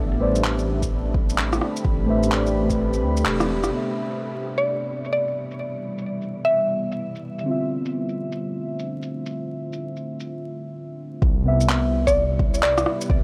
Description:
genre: future garage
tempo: 128 BPM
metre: 4/4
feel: swing 63% on 16ths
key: unclear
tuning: A4 = 438 Hz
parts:
  - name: deep dark ambient pad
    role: sustained chords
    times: 0.0-13.2 s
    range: G3 to B5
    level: -32 LUFS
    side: equal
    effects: chorus, built-in reverb, vintage 12-bit sampler grit, sidechain pumping
  - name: dark detuned saw bass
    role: bass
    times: 0.0-3.7, 11.2-13.2 s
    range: E1 to D2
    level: -27 LUFS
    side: equal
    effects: sidechain pumping
  - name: muted felt-like synth keys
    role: accompaniment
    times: 0.2-13.2 s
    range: C3 to E5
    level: -30 LUFS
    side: equal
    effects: chorus, sidechain pumping, tape echo
  - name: electronic shaker, handclaps and rim click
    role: drums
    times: 0.4-13.1 s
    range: none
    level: -29 LUFS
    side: equal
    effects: overdrive, low-pass filter on perc, low-pass filter on snare, low-pass filter on room
  - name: electronic kick drum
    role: drums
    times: 0.8-2.8, 11.2-13.2 s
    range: none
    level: -25 LUFS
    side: equal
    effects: overdrive
  - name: mallet-like synth pluck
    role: melody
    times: 4.6-6.9, 12.1-12.9 s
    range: D5 to E5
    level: -26 LUFS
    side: equal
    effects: chorus, tape echo
room: light reverb, digital ambience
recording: dry, gritty hardware recording, vinyl crackle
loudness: -23 LUFS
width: mono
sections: 0.0-3.7 A section; 3.7-11.2 B section; 11.2-13.2 C section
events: kick drops out 2.8-3.7; band accent 3.3; filter sweep on ambient pad 3.7-11.2; break 10.3-11.2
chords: 0.0 Am11; 3.7 Cmaj7; 7.5 Dm9; 11.2 Cmaj7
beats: 0.44 0.91 1.38 | 1.85 2.32 2.79 3.25 | 3.72 4.19 4.66 5.13 | 5.60 6.07 6.54 7.00 | 7.47 7.94 8.41 8.88 | 9.35 9.82 10.29 10.75 | 11.22 11.69 12.16 12.63 | 13.10

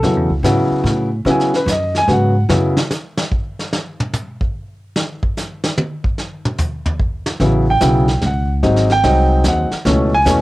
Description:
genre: jazz piano trio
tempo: 147 BPM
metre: 3/4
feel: swing 66% on 8ths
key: unclear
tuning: A4 = 441 Hz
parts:
  - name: warm baby grand piano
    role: melody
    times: 0.0-2.8, 7.4-10.4 s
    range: B2 to G#5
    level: -15 LUFS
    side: equal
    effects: cassette tape
  - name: upright bass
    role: bass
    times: 0.0-2.8, 7.4-10.4 s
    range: G#1 to C#3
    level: -16 LUFS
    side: equal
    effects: none
  - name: vintage brush drum kit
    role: drums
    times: 0.0-10.4 s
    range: brushed snare drum, hi-hat, kick drum, snare drum, toms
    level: -21 LUFS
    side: equal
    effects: cassette tape
room: moderate booth ambience, RT60 0.2 s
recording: home recording on cassette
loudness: -14 LUFS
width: side -18 dB against mid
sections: 0.0-10.4 A section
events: grand piano solo 0.0-10.4; drum solo 2.5-7.4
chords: 0.0 F#m7; 1.3 C#7(no3); 2.5 F#5; 5.0 N.C.; 7.4 A7; 8.6 G#7; 9.9 C#m7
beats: | 0.03 0.45 0.85 | 1.26 1.68 2.08 | 2.49 2.90 3.31 | 3.72 4.13 4.54 | 4.95 5.36 5.77 | 6.18 6.59 7.00 | 7.40 7.81 8.22 | 8.63 9.04 9.45 | 9.86 10.27

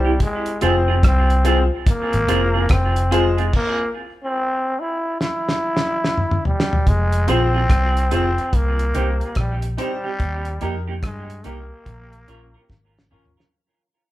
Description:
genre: roots reggae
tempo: 72 BPM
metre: 4/4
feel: swing 63% on 16ths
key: F harmonic minor, F minor from 6.9 s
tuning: A4 = 440 Hz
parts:
  - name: growling trombone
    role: melody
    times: 0.0-13.1 s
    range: G3 to E4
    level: -23 LUFS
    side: equal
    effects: none
  - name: semi-hollow electric guitar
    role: accompaniment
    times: 0.0-13.4 s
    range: Bb3 to Bb4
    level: -26 LUFS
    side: right 4 dB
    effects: dub echo
  - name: vintage muted fingered electric bass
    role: bass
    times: 0.0-13.4 s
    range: F1 to G2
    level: -20 LUFS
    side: equal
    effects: none
  - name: damped 70s drum kit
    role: drums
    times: 0.2-13.6 s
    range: crash cymbal, hi-hat, kick drum, rim click, snare drum, toms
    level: -20 LUFS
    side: equal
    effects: none
  - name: clear grand piano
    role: stabs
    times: 0.6-13.3 s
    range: Db4 to C5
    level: -24 LUFS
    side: left 4 dB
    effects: none
room: light reverb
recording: band playing live in one room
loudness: -17 LUFS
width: side -15 dB against mid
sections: 0.0-6.9 A section; 6.9-13.5 B section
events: stop 3.5-6.9; drum fill 5.2-6.9, 12.7-13.5; fade-out 6.9-13.5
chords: 0.2 Fm; 3.5 N.C.; 6.9 Fm; 8.5 Cm; 10.2 Eb; 11.9 Bbm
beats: | 0.20 1.04 1.87 2.70 | 3.54 4.37 5.20 6.03 | 6.87 7.70 8.53 9.37 | 10.20 11.03 11.87 12.70

